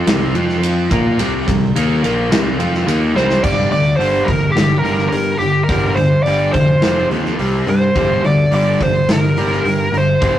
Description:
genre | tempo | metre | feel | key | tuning
hard rock | 106 BPM | 4/4 | straight | G minor | A4 = 440 Hz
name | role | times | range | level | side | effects
overdriven electric guitar | riff | 0.0-10.4 s | F2 to Bb4 | -16 LUFS | equal | spring reverb
modern bright picked electric bass | bass | 0.0-10.4 s | F1 to Bb2 | -21 LUFS | equal | none
big rock drum kit | drums | 0.1-10.4 s | crash cymbal, hi-hat, kick drum, ride cymbal, snare drum | -20 LUFS | equal | none
bluesy overdriven lead guitar | melody | 3.2-10.4 s | G4 to D5 | -17 LUFS | equal | distortion
room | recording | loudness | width
moderate stone room reverb, RT60 1.1 s | rough rehearsal-room recording, tube saturation, cassette tape | -13 LUFS | side -12 dB against mid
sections
0.0-3.5 A section; 3.5-10.4 B section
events
drum fill 3.2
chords
0.1 C5; 0.3 F5; 0.9 C5; 3.5 G5; 6.8 F5; 7.4 C5; 8.0 Gm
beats
0.07 0.63 | 1.19 1.76 2.32 2.88 | 3.45 4.01 4.58 5.14 | 5.71 6.27 6.84 7.40 | 7.97 8.53 9.10 9.66 | 10.23

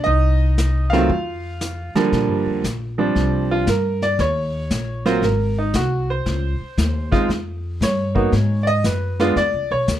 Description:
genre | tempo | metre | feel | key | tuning
jazz piano trio | 116 BPM | 4/4 | swing 67% on 8ths | unclear | A4 = 439 Hz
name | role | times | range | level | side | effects
bright baby grand piano | melody | 0.0-9.9 s | D3 to F5 | -20 LUFS | right 2 dB | none
upright bass | bass | 0.0-10.0 s | Ab1 to Bb2 | -21 LUFS | equal | none
vintage brush drum kit | drums | 0.1-10.0 s | brushed snare drum, hi-hat, kick drum, snare drum | -24 LUFS | left 2 dB | none
room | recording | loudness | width
light reverb | none | -17 LUFS | side -11 dB against mid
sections
0.0-2.1 A section; 2.1-10.0 B section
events
grand piano solo 2.1-10.0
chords
0.1 Cm; 1.1 N.C.; 2.1 Bb69; 4.2 Eb7(no3); 5.2 Ab; 6.3 Dbmaj9; 8.3 Abm7; 9.4 Db7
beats
| 0.06 0.58 1.09 1.61 | 2.13 2.64 3.16 3.68 | 4.19 4.71 5.23 5.75 | 6.26 6.78 7.30 7.82 | 8.33 8.85 9.37 9.89

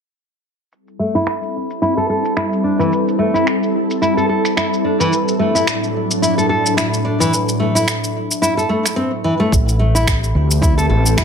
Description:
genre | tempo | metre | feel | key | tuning
organic downtempo | 109 BPM | 4/4 | swing 56% on 16ths | A dorian | A4 = 438 Hz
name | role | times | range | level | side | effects
ethereal airy pad | sustained chords | 1.1-11.2 s | A2 to A4 | -20 LUFS | equal | ensemble chorus, built-in reverb, sidechain pumping
electronic shaker and finger snaps | drums | 0.7-11.2 s | none | -22 LUFS | right 1 dB | low-pass filter on perc, low-pass filter on snare
nylon-string guitar | arpeggios | 1.0-11.2 s | E3 to A4 | -18 LUFS | equal | low-pass filter, digital delay
fretless electric bass | bass | 9.5-11.2 s | A1 to D2 | -15 LUFS | equal | sidechain pumping
electronic kick drum | drums | 9.5-11.2 s | none | -17 LUFS | equal | none
room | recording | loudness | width
light reverb | none | -14 LUFS | side -6 dB against mid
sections
0.7-9.5 A section; 9.5-11.2 B section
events
filter sweep on drum 0.7-9.5; filter sweep on nylon-string guitar 0.7-9.5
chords
0.7 Am7; 5.1 Dadd9/A; 9.5 Am7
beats
| 0.72 1.27 1.82 2.37 | 2.92 3.47 4.02 4.57 | 5.12 5.67 6.22 6.77 | 7.32 7.87 8.43 8.97 | 9.53 10.08 10.63 11.18

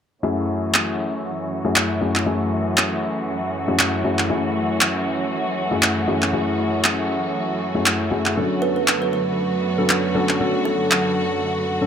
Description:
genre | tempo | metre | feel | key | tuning
afro house | 118 BPM | 4/4 | swing 56% on 16ths | F# minor | A4 = 439 Hz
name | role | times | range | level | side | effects
rich symphonic string section | sustained chords | 0.2-11.9 s | F#2 to F#4 | -24 LUFS | right 2 dB | low-pass filter
felt-muted upright piano | stabs | 0.2-11.9 s | F#2 to A4 | -23 LUFS | left 2 dB | low-pass filter, dub echo
electronic handclaps | drums | 0.7-11.0 s | none | -20 LUFS | equal | none
kalimba | melody | 8.6-11.2 s | A4 to B4 | -24 LUFS | right 4 dB | analog delay
room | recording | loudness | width
wet spring reverb, RT60 1.3 s | echo-heavy mix | -18 LUFS | side -8 dB against mid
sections
0.2-11.9 A section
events
filter sweep on string section 0.2-11.9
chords
0.2 F#m7; 8.4 Bm7/F#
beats
| 0.23 0.74 1.25 1.76 | 2.27 2.77 3.28 3.79 | 4.30 4.81 5.32 5.83 | 6.33 6.84 7.35 7.86 | 8.37 8.88 9.38 9.89 | 10.40 10.91 11.42

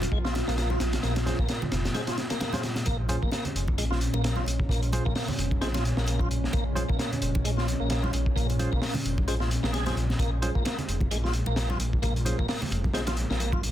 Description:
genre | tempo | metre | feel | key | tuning
breakbeat, breaks | 131 BPM | 4/4 | swing 56% on 16ths | unclear | A4 = 440 Hz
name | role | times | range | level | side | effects
warbly tape-like pad | sustained chords | 0.0-13.7 s | Bb2 to F4 | -33 LUFS | equal | chorus, built-in reverb, sidechain pumping
detuned saw bass | bass | 0.0-13.7 s | F1 to Bb1 | -29 LUFS | equal | none
crunchy breakbeat drum kit | drums | 0.0-13.7 s | hi-hat, kick drum, snare drum | -29 LUFS | equal | none
congas | percussion | 0.0-13.6 s | none | -37 LUFS | right 2 dB | none
tonewheel organ | riff | 0.1-13.6 s | Ab3 to Ab4 | -35 LUFS | equal | chorus vibrato, fast rotary speaker, overdrive, dub echo
barky tine electric piano | stabs | 1.3-13.0 s | Db4 to C5 | -37 LUFS | moving between left 3 dB and right 3 dB | auto-pan, dub echo
room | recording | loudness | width
light reverb | dense, heavily limited modern master | -25 LUFS | side -12 dB against mid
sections
0.0-13.7 A section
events
none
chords
0.0 Bbm7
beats
0.12 0.58 | 1.04 1.49 1.95 2.41 | 2.87 3.33 3.78 4.24 | 4.70 5.16 5.62 6.07 | 6.53 6.99 7.45 7.91 | 8.36 8.82 9.28 9.74 | 10.20 10.65 11.11 11.57 | 12.03 12.49 12.94 13.40

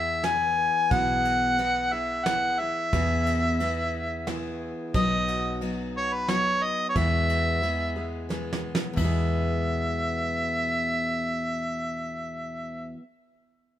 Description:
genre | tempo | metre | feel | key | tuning
honky-tonk and classic country | 89 BPM | 3/4 | straight | E major | A4 = 441 Hz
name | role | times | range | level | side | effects
mellow harmonica | melody | 0.0-12.9 s | B4 to G#5 | -26 LUFS | equal | none
picked steel-string acoustic guitar | accompaniment | 0.0-13.0 s | E2 to G#4 | -30 LUFS | left 1 dB | none
vintage muted fingered electric bass | bass | 0.0-12.9 s | B1 to E2 | -31 LUFS | right 1 dB | none
soft brush drum kit | drums | 0.2-9.1 s | crash cymbal, kick drum, ride cymbal, snare drum | -32 LUFS | right 1 dB | none
room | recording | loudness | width
light reverb | minimal, uncompressed stereo recording | -24 LUFS | side -11 dB against mid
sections
0.0-9.0 A section; 9.0-13.0 B section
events
drum fill 8.3-9.0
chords
0.0 E; 4.9 B; 7.0 E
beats
0.24 | 0.91 1.58 2.26 | 2.93 3.60 4.27 | 4.94 5.61 6.29 | 6.96 7.63 8.30 | 8.97 9.64 10.31 | 10.99 11.66 12.33

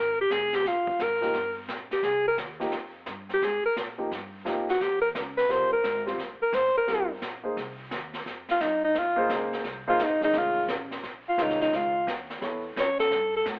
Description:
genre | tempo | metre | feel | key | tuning
jazz, small-group swing and bop | 173 BPM | 4/4 | swing 65% on 8ths | C minor, F minor from 8.3 s | A4 = 440 Hz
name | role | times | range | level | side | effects
mellow alto saxophone | melody | 0.0-13.5 s | Eb4 to C#5 | -24 LUFS | equal | none
upright bass | bass | 0.0-13.6 s | F1 to Bb2 | -44 LUFS | equal | none
jazz brush drum kit | drums | 0.3-13.6 s | brushed snare drum, hi-hat, kick drum, snare drum | -35 LUFS | equal | none
warm concert grand piano | accompaniment | 1.2-12.6 s | Eb3 to C#5 | -30 LUFS | equal | none
room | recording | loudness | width
moderate large studio reverb, RT60 1.1 s | telephone sound | -24 LUFS | side -28 dB against mid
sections
0.0-8.3 A section; 8.3-13.6 B section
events
none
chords
0.0 Absus2; 1.3 Gm; 2.0 Cm7; 2.7 Fmadd9; 4.1 Db69; 5.5 C5; 6.9 Abmaj13/G; 7.6 Cm; 8.3 Fm9; 9.6 Bbm11; 10.3 F7alt; 11.0 Bbm9; 12.4 A7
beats
0.30 0.65 0.99 | 1.34 1.68 2.03 2.38 | 2.72 3.07 3.41 3.76 | 4.11 4.45 4.80 5.14 | 5.49 5.84 6.18 6.53 | 6.88 7.22 7.57 7.92 | 8.26 8.61 8.96 9.30 | 9.65 9.99 10.34 10.69 | 11.03 11.38 11.73 12.07 | 12.42 12.77 13.11 13.46

